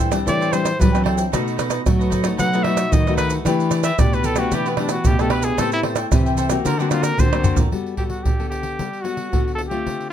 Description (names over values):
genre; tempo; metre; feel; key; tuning
samba and choro; 113 BPM; 4/4; straight; G major; A4 = 439 Hz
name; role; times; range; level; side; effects
cavaquinho; accompaniment; 0.0-7.7 s; D#4 to G5; -27 LUFS; right 2 dB; none
nylon-string guitar; accompaniment; 0.0-10.1 s; A2 to B4; -25 LUFS; left 6 dB; none
nylon-string guitar; bass; 0.0-7.6 s; A2 to F#3; -23 LUFS; left 1 dB; none
maracas, pandeiro, tamborim and surdo; percussion; 0.1-10.1 s; none; -20 LUFS; right 1 dB; none
warm trumpet; melody; 0.3-10.1 s; B3 to F#5; -24 LUFS; equal; none
room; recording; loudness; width
light reverb; close, detailed microphones; -17 LUFS; side -10 dB against mid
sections
0.0-7.7 A section; 7.7-10.1 B section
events
trumpet solo 0.0-7.7; drum fill 7.3-7.7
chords
0.0 Am7; 1.3 B7; 3.5 Em7; 5.6 Am9; 6.7 Daug7; 7.7 Gmaj9